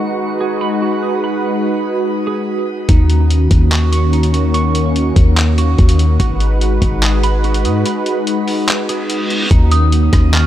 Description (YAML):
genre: hip hop, atmospheric cloud-rap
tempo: 145 BPM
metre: 4/4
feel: half-time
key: unclear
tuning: A4 = 440 Hz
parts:
  - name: warm analog pad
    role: sustained chords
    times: 0.0-10.5 s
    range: Eb3 to Cb5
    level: -17 LUFS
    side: equal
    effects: chorus, sidechain pumping
  - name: semi-hollow electric guitar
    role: arpeggios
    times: 0.0-10.5 s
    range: Eb4 to Db6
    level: -24 LUFS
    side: right 6 dB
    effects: analog chorus, low-pass filter, tape echo
  - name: warm 808-style bass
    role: bass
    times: 2.9-10.5 s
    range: Ab1 to Ab2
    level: -13 LUFS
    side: equal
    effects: none
  - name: trip hop sampler-style drum kit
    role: drums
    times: 2.9-10.4 s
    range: handclaps, hi-hat, kick drum, rim click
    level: -16 LUFS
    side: equal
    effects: none
  - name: reverse cymbal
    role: sound effects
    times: 8.9-9.5 s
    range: none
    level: -24 LUFS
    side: equal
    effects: none
  - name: dark detuned synth bell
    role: melody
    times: 9.7-10.5 s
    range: Eb6 to F6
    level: -20 LUFS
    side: equal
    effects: chorus, phaser, low-pass filter, tape echo
room: light reverb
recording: none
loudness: -12 LUFS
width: side -12 dB against mid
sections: 0.0-9.5 A section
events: break 7.9-9.5; reverse cymbal 8.9-9.5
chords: 0.0 Abm7; 2.9 Ebm7; 6.2 Abm7; 9.5 Ebm7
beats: 0.40 0.82 | 1.23 1.65 2.06 2.47 | 2.89 3.30 3.71 4.13 | 4.54 4.96 5.37 5.78 | 6.20 6.61 7.03 7.44 | 7.85 8.27 8.68 9.09 | 9.51 9.92 10.34